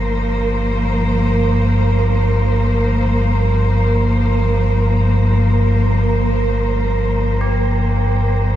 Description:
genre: dark ambient drone.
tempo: free time.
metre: none.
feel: none.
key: G minor.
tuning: A4 = 440 Hz.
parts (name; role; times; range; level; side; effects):
bright studio cello section; sustained chords; 0.0-8.6 s; G2 to C5; -19 LUFS; equal; none.
deep rumbling drone; drone; 0.0-8.6 s; G1 to G2; -16 LUFS; equal; built-in reverb, lush chorus.
wind-like tuned noise texture; texture; 0.0-8.6 s; Bb4; -23 LUFS; right 3 dB; built-in reverb.
tubular bells; arpeggios; 7.4-8.6 s; G4; -27 LUFS; right 6 dB; none.
room: moderate huge ambient reverb, RT60 8.1 s.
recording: none.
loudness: -14 LUFS.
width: side -12 dB against mid.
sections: 0.0-8.6 A section.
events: filter sweep on synth drone 0.0-8.6.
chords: 0.0 Gm7.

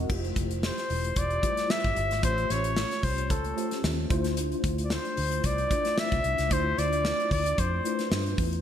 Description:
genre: polished 1980s jazz-funk pop.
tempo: 112 BPM.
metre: 4/4.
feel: swing 54% on 16ths.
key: unclear.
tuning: A4 = 440 Hz.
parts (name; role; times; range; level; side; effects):
mellow tine electric piano; accompaniment; 0.0-8.6 s; G3 to F#5; -32 LUFS; left 1 dB; medium stereo tremolo, ensemble chorus.
vintage muted fingered electric bass; bass; 0.0-8.6 s; E1 to G2; -31 LUFS; equal; none.
modern studio drum kit; drums; 0.1-8.6 s; crash cymbal, hi-hat, kick drum, snare drum; -30 LUFS; equal; gated reverb.
warm flugelhorn; melody; 0.7-8.1 s; A4 to E5; -29 LUFS; left 1 dB; none.
room: moderate lush hall reverb, RT60 2.1 s.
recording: bright 1980s-style digital production.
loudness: -25 LUFS.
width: side -9 dB against mid.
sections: 0.1-8.6 A section.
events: none.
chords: 0.1 Fmaj9; 2.2 A7alt; 4.1 Dm9.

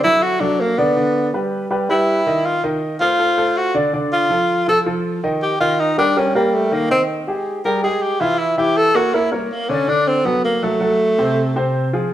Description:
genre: jazz.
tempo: 162 BPM.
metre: 4/4.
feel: straight.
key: unclear.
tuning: A4 = 440 Hz.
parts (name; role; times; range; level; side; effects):
breathy tenor saxophone; melody; 0.0-11.8 s; G3 to Bb4; -17 LUFS; equal; none.
warm grand piano; accompaniment; 0.0-12.1 s; C3 to E5; -19 LUFS; equal; none.
room: wet stone room reverb, RT60 1.3 s.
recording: band playing live in one room.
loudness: -15 LUFS.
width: side -12 dB against mid.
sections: 1.0-12.1 A section.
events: tenor saxophone solo 0.0-12.1.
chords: 0.0 D; 1.0 G6; 2.4 F7; 3.9 Dm; 5.4 Eb; 6.9 Ab5; 8.4 Edim7; 9.1 A#dim7; 9.9 D7; 11.4 Am.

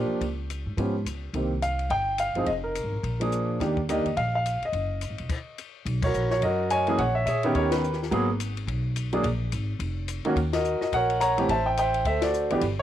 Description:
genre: jazz piano trio.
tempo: 213 BPM.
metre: 4/4.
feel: swing 60% on 8ths.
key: Eb major, B major from 5.9 s.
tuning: A4 = 440 Hz.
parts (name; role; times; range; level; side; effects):
warm grand piano; melody; 0.0-12.8 s; Eb3 to A#5; -25 LUFS; right 1 dB; none.
upright bass; bass; 0.0-12.8 s; Fb1 to A#2; -30 LUFS; equal; none.
compact cocktail drum kit; drums; 0.2-12.7 s; crash cymbal, hi-hat, kick drum, ride cymbal, snare drum; -36 LUFS; left 5 dB; none.
room: small room ambience.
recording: 1960s-style stereo.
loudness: -24 LUFS.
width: side -11 dB against mid.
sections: 0.0-5.9 A section; 5.9-12.8 B section.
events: stop 5.3-5.9; band accent 6.0, 7.7, 10.5, 12.2.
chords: 0.2 Db5; 1.3 Cm; 2.5 Fm; 3.0 Bb7; 3.6 Ebmaj7; 4.7 N.C.; 5.9 Bmaj9; 7.0 A#m7b5; 7.6 D#7b13; 8.1 G#m9; 9.2 A#5; 10.4 D#m7; 11.5 Am7; 12.1 D7.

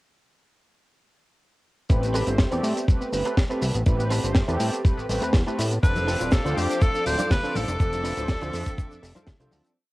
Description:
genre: nu-disco, nu disco.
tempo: 122 BPM.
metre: 4/4.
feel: straight.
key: A minor.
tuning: A4 = 440 Hz.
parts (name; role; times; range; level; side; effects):
mellow synth brass; accompaniment; 1.9-9.7 s; F3 to C5; -30 LUFS; equal; chorus, cassette tape, sidechain pumping, tape echo.
wide unison pluck; arpeggios; 1.9-9.7 s; G3 to A4; -37 LUFS; left 2 dB; none.
fat analog bass; bass; 1.9-9.6 s; D1 to A2; -27 LUFS; equal; tube saturation.
electronic kick drum; drums; 1.9-9.4 s; none; -21 LUFS; equal; cassette tape.
tight funk drum kit; drums; 1.9-9.7 s; hi-hat, shaker, snare drum; -29 LUFS; equal; cassette tape.
direct-recorded clean electric guitar; riff; 2.1-9.7 s; C4 to D5; -32 LUFS; right 1 dB; analog chorus.
breathy tenor saxophone; melody; 5.8-9.5 s; G4 to C5; -28 LUFS; equal; cassette tape.
rich symphonic string section; sustained chords; 5.8-9.7 s; A4 to D6; -38 LUFS; left 3 dB; sidechain pumping.
tube shaker and congas; percussion; 5.8-9.7 s; none; -36 LUFS; left 1 dB; none.
room: little or no reverb.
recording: home recording on cassette.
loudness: -21 LUFS.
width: side -19 dB against mid.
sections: 1.9-9.8 drop.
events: drop 1.9-9.8; fade-out 7.1-9.8.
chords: 1.9 Am9; 5.8 F6.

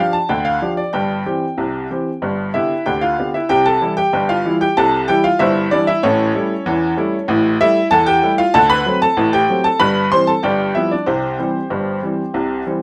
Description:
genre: ragtime piano.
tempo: 95 BPM.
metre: 2/4.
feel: straight.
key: C major.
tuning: A4 = 440 Hz.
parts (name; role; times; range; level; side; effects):
bright upright piano; solo; 0.0-12.8 s; G1 to C6; -17 LUFS; equal; none.
room: moderate studio reverb, RT60 0.5 s.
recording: none.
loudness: -17 LUFS.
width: mono.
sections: 0.0-3.5 A section; 3.5-12.8 A section.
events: none.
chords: 0.0 G5; 0.9 C/G; 2.2 G; 3.5 C; 6.0 A7; 8.5 D7; 9.8 C/G; 10.4 G7; 11.1 C.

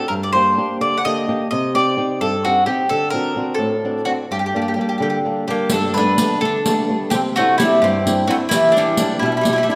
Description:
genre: italian folk, Italian serenade.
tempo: 86 BPM (dotted quarters).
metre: 6/8.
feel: straight.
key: G harmonic minor, G major from 5.7 s.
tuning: A4 = 439 Hz.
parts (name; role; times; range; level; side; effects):
mandolin; melody; 0.0-9.8 s; D4 to F#5; -21 LUFS; equal; none.
flamenco guitar; accompaniment; 0.0-9.8 s; G2 to G4; -23 LUFS; equal; none.
bowl-back mandolin; second line; 5.5-9.7 s; G3 to D4; -26 LUFS; equal; none.
riq; percussion; 5.7-9.7 s; none; -25 LUFS; equal; none.
room: wet recital hall reverb, RT60 1.6 s.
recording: none.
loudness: -18 LUFS.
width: mono.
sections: 0.0-5.7 A section; 5.7-9.8 B section.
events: none.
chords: 0.1 Gm; 1.5 Cm; 2.9 D7; 4.3 Gm; 5.7 Gadd9; 7.1 Cadd9; 8.5 Em7.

